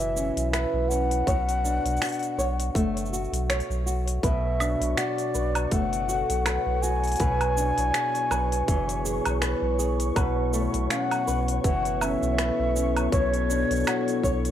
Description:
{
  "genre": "folktronica",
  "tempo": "81 BPM",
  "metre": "4/4",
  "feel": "swing 56% on 16ths",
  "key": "B dorian",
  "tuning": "A4 = 440 Hz",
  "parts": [
    { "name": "breathy mellow concert flute", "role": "melody", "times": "0.0-14.5 s", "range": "C#5 to G#5", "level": "-29 LUFS", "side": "left 2 dB", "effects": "vintage 12-bit sampler grit, digital delay" },
    { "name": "flamenco guitar", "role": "arpeggios", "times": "0.0-14.5 s", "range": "B2 to C#5", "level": "-28 LUFS", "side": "equal", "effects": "digital delay" },
    { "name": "warm sub bass", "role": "bass", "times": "0.0-14.5 s", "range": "F#1 to B1", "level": "-28 LUFS", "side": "equal", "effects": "none" },
    { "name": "organic electronic drum kit", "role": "drums", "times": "0.0-14.5 s", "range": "cabasa, finger snaps, hi-hat, woodblock", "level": "-31 LUFS", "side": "right 1 dB", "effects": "none" },
    { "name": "electronic kick drum", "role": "drums", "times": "1.3-14.4 s", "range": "none", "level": "-26 LUFS", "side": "equal", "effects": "none" },
    { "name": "warbly tape-like pad", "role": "sustained chords", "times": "5.1-14.5 s", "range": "F#3 to A4", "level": "-33 LUFS", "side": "left 3 dB", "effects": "chorus, built-in reverb" },
    { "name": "flickering grainy texture", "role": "texture", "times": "4.4-14.5 s", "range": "C#5 to C#6", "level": "-37 LUFS", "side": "right 2 dB", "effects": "built-in reverb" }
  ],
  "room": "light reverb, digital ambience",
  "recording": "none",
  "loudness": "-23 LUFS",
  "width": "side -10 dB against mid",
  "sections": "0.0-14.5 A section",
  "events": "none",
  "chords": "0.0 F#m7; 1.3 Dmaj7/B; 4.2 Bm7; 7.2 E7/B; 10.2 F#m7/B; 13.1 Dmaj7/B"
}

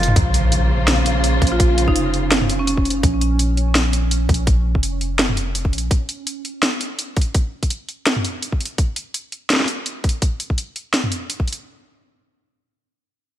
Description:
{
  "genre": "half-time drum and bass",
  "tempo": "167 BPM",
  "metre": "4/4",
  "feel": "swing 56% on 16ths, half-time",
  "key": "Bb minor",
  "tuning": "A4 = 440 Hz",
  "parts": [
    { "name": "warm symphonic string section", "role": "sustained chords", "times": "0.0-3.0 s", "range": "C3 to C5", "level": "-24 LUFS", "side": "left 2 dB", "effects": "sidechain pumping, low-pass filter" },
    { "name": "long sustained 808-style bass", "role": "bass", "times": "0.0-5.9 s", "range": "F1 to Bb1", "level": "-20 LUFS", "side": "equal", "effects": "none" },
    { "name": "drum and bass drum kit", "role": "drums", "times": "0.0-11.6 s", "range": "hi-hat, snare drum, toms", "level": "-20 LUFS", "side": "equal", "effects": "studio ambience" },
    { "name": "electronic kick drum", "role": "drums", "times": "0.2-11.5 s", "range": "none", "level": "-18 LUFS", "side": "equal", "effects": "studio ambience" },
    { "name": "impact", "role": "sound effects", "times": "0.2-1.6 s", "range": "none", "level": "-26 LUFS", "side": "equal", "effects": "none" },
    { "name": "pulsing gated texture", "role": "texture", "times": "0.5-5.9 s", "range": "Db4", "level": "-28 LUFS", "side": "right 5 dB", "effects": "chorus, built-in reverb" },
    { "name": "marimba with medium mallets", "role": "melody", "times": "1.5-2.7 s", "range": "Db4 to F4", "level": "-24 LUFS", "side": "right 1 dB", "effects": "ping-pong delay" }
  ],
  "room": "light reverb",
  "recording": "bright 1980s-style digital production",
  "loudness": "-17 LUFS",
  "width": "side -12 dB against mid",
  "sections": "0.2-11.7 A section; 11.7-13.4 B section",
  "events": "drum fill 0.0; impact 0.2-1.6",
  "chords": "0.2 Bbmadd9; 5.9 N.C."
}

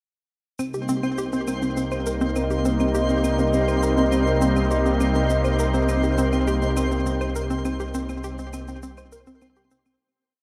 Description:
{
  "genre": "ambient, sequencer-driven space music",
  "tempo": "102 BPM",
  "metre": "4/4",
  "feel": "straight",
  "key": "C minor",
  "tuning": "A4 = 441 Hz",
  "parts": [
    { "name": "lush unison pad", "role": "sustained chords", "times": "0.6-10.0 s", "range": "C3 to Eb4", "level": "-26 LUFS", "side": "equal", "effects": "chorus" },
    { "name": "hollow square pluck", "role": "riff", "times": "0.6-9.9 s", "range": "C4 to C5", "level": "-28 LUFS", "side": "equal", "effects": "chorus, delay" },
    { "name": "warm sub bass", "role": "bass", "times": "0.6-10.0 s", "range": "C2", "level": "-30 LUFS", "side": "equal", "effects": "tube saturation" },
    { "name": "cabasa and claves", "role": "percussion", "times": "0.6-10.0 s", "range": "none", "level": "-43 LUFS", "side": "equal", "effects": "delay" },
    { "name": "twinkling granular texture", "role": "texture", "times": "0.8-10.0 s", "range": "C4 to C5", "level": "-34 LUFS", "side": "equal", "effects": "built-in reverb" }
  ],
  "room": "wet huge ambient reverb, RT60 7.4 s",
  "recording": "dreamy mix soaked in reverb",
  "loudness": "-22 LUFS",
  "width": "mono",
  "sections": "0.6-10.0 A section",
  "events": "fade-out 6.9-10.0",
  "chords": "0.6 Cm7"
}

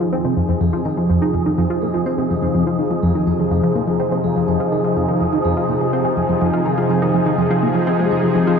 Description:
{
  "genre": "ambient, sequencer-driven space music",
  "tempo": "124 BPM",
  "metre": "4/4",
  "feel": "straight",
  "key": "F minor",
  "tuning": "A4 = 440 Hz",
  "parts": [
    { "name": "lush unison pad", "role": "sustained chords", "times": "0.0-8.6 s", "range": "C3 to Ab4", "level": "-20 LUFS", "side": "equal", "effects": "chorus, phaser" },
    { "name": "vibraphone with soft mallets", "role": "arpeggios", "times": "0.0-8.6 s", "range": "Eb4 to Eb5", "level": "-27 LUFS", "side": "left 2 dB", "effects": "auto-pan, tape echo" },
    { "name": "tight sequenced synth", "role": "riff", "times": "0.0-8.6 s", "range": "F2 to C4", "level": "-18 LUFS", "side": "equal", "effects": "chorus, phaser, tape echo" },
    { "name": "wind-like tuned noise texture", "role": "texture", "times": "0.0-8.6 s", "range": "Ab4", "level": "-26 LUFS", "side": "equal", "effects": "built-in reverb" }
  ],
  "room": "wet huge ambient reverb, RT60 8.0 s",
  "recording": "dark, warm production",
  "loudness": "-16 LUFS",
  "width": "side -6 dB against mid",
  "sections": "0.0-8.6 A section",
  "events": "fade-in on vibraphone 0.0-8.6",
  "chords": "0.0 Fm7"
}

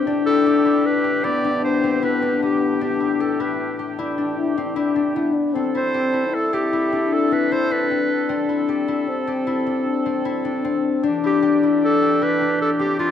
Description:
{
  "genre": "contemporary instrumental, chamber music in an uneven meter",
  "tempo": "153 BPM",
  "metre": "7/4",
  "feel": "straight",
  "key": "A minor",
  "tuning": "A4 = 439 Hz",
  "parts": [
    { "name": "dark French horn", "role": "second line", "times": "0.0-13.1 s", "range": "B3 to E4", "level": "-23 LUFS", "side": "left 2 dB", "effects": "none" },
    { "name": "mellow woodwind section", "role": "sustained chords", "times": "0.0-13.1 s", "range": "A2 to A4", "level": "-28 LUFS", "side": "right 2 dB", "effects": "none" },
    { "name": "concert harp", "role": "arpeggios", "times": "0.0-13.1 s", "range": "A3 to G4", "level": "-22 LUFS", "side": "left 7 dB", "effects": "none" },
    { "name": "bright clarinet", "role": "melody", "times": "0.3-13.1 s", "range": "F4 to D5", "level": "-22 LUFS", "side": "right 1 dB", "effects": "none" }
  ],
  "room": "moderate concert hall reverb, RT60 2.2 s",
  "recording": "dark, warm production",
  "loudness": "-18 LUFS",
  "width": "side -9 dB against mid",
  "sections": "0.0-13.1 A section",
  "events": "none",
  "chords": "0.1 Em7/A; 5.6 Am7; 11.0 Em7/A"
}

